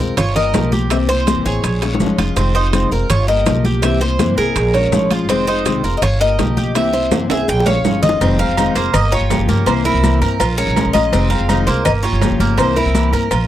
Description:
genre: latin, Cuban son and guajira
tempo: 164 BPM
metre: 4/4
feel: straight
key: F minor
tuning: A4 = 439 Hz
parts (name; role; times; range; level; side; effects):
- fingerpicked steel-string acoustic guitar; accompaniment; 0.0-13.3 s; C3 to G4; -20 LUFS; left 6 dB; none
- Cuban tres; arpeggios; 0.0-13.5 s; Bb3 to Db5; -22 LUFS; right 4 dB; none
- upright bass; bass; 0.0-13.5 s; F1 to G2; -18 LUFS; right 1 dB; none
- guiro; percussion; 0.0-13.5 s; none; -33 LUFS; left 5 dB; none
- Cuban tres; melody; 0.2-13.5 s; Bb4 to G5; -20 LUFS; left 1 dB; none
- bongos and cowbell; percussion; 0.2-13.5 s; none; -24 LUFS; left 6 dB; none
- congas; percussion; 0.2-13.5 s; none; -22 LUFS; equal; none
- maracas; percussion; 0.2-13.5 s; none; -33 LUFS; left 6 dB; none
- timbales and agogo bells; percussion; 0.2-13.5 s; none; -23 LUFS; right 9 dB; none
room: light reverb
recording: dry, close 1970s-style studio recording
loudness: -13 LUFS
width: side -12 dB against mid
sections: 0.0-8.2 A section; 8.2-13.5 B section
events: drum fill 1.8-2.4, 7.1-8.2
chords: 0.2 Gm7b5; 0.9 C7; 1.6 Bbm7; 2.4 Fm7; 3.1 Gm7b5; 3.8 C7; 4.6 Bbm7; 5.3 Fm7; 6.0 Gm7b5; 6.8 C7; 7.5 Bbm7; 8.2 Fm7; 8.9 Gm7b5; 9.7 C7; 10.4 Bbm7; 11.1 Fm7; 11.9 Gm7b5; 12.6 C7

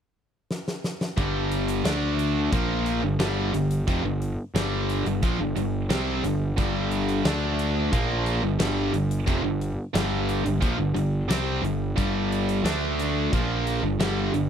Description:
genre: classic rock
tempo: 89 BPM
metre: 4/4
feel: straight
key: unclear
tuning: A4 = 439 Hz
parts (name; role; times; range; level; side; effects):
- big rock drum kit; drums; 0.5-14.5 s; hi-hat, kick drum, snare drum; -29 LUFS; equal; none
- biting overdriven guitar; riff; 1.2-14.5 s; F2 to D4; -28 LUFS; left 12 dB; none
- tight distorted guitar; riff; 1.2-14.5 s; F2 to D4; -28 LUFS; right 12 dB; distortion
- fuzz picked electric bass; bass; 1.2-14.5 s; F1 to D2; -28 LUFS; equal; overdrive
room: little or no reverb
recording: dry, close 1970s-style studio recording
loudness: -23 LUFS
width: side -8 dB against mid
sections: 0.0-1.2 A section; 1.2-14.5 B section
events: drum fill 0.5-1.2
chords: 0.0 N.C.; 1.2 G5; 1.8 D5; 2.5 G5; 7.3 D5; 7.9 G5; 12.6 D5; 13.3 G5

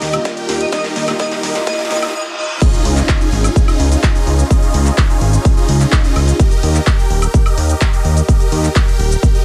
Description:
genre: EDM, festival progressive house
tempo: 127 BPM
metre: 4/4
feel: straight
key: unclear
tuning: A4 = 438 Hz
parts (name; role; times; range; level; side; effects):
- picked steel-string acoustic guitar; accompaniment; 0.0-2.1 s; Eb3 to F4; -26 LUFS; equal; sidechain pumping, delay
- supersaw chords; riff; 0.0-9.4 s; Db4 to Ab5; -23 LUFS; equal; phaser, sidechain pumping, delay
- fat analog bass; bass; 0.0-9.2 s; Eb1 to Eb2; -16 LUFS; equal; sidechain pumping
- big-room dance drum kit; drums; 0.0-9.4 s; crash cymbal, handclaps, hi-hat, shaker, snare drum, woodblock; -25 LUFS; equal; high-pass filter on snare, high-pass filter on hats, high-pass filter on perc, high-pass filter on cymbals
- riser, reverse cymbal and impact; sound effects; 0.1-4.5 s; none; -29 LUFS; equal; none
- electronic kick drum; drums; 0.3-9.3 s; none; -15 LUFS; equal; high-pass filter on kick
- airy dreamy lead; melody; 0.6-2.5 s; Eb5; -27 LUFS; equal; chorus, phaser, delay
room: little or no reverb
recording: high-pass filter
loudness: -14 LUFS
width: mono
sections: 0.0-2.6 A section; 2.6-9.4 B section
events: build-up 0.0-2.6; drum fill 0.0-2.1; riser 0.1-2.1; reverse cymbal 1.7-2.6; drop 2.6-9.4; impact 2.6-4.5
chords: 0.0 Eb; 2.6 Dbadd9; 6.4 Eb

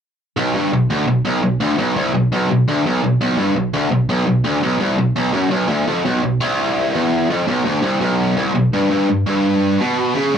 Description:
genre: metal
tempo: 169 BPM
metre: 4/4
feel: straight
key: B minor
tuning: A4 = 440 Hz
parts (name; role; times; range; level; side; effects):
- tight distorted guitar; solo; 0.4-10.4 s; B1 to C#3; -15 LUFS; equal; distortion
room: light reverb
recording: dry, close 1970s-style studio recording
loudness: -15 LUFS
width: side -8 dB against mid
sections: 0.4-6.1 A section; 6.1-10.4 B section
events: none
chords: none

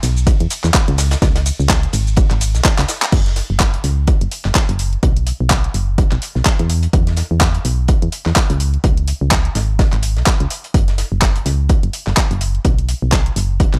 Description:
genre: piano house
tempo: 126 BPM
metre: 4/4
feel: swing 57% on 16ths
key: unclear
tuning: A4 = 440 Hz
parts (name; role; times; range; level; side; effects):
- solid FM bass; bass; 0.0-13.8 s; F#1 to E2; -19 LUFS; equal; sidechain pumping
- garage drum kit; drums; 0.0-13.8 s; crash cymbal, handclaps, hi-hat, ride cymbal, shaker; -23 LUFS; equal; overdrive, small room reverb
- warm soul drum kit; drums; 0.0-13.7 s; hi-hat, snare drum; -31 LUFS; equal; sidechain pumping on hats, high-pass filter on hats, small room reverb, high-pass filter on snare, high-pass filter on room
- electronic kick drum; drums; 0.3-13.7 s; none; -17 LUFS; equal; small room reverb
room: digital ambience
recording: dry, gritty hardware recording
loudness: -16 LUFS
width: mono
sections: 0.0-3.1 A section; 3.1-13.8 B section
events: drop 0.0-3.1; drum fill 2.8-3.1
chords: none

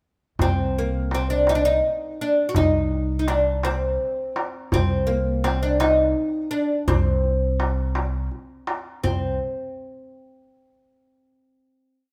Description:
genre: Arabic maqam ensemble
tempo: 56 BPM (dotted quarters)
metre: 6/8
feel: straight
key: C minor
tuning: A4 = 440 Hz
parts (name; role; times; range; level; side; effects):
- oud; melody; 0.4-9.4 s; Bb3 to F#4; -25 LUFS; equal; none
- upright bass; bass; 0.4-9.4 s; C2; -26 LUFS; equal; none
- darbuka; percussion; 0.4-9.4 s; none; -28 LUFS; equal; none
room: light reverb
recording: none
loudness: -23 LUFS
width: mono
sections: 0.4-9.0 A section; 9.0-11.2 final note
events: none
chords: none

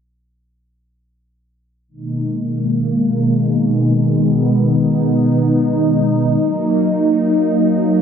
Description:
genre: synthwave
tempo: free time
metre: none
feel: none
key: G# minor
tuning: A4 = 438 Hz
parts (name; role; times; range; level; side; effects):
- brassy analog pad; sustained chords; 1.9-8.0 s; B2 to D#4; -13 LUFS; equal; chorus
room: moderate plate reverb, RT60 2.4 s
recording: dense, heavily limited modern master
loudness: -14 LUFS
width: side -8 dB against mid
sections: 1.9-8.0 A section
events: filter sweep on analog synth pad 1.9-8.0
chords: 1.9 G#madd9; 6.4 D#m

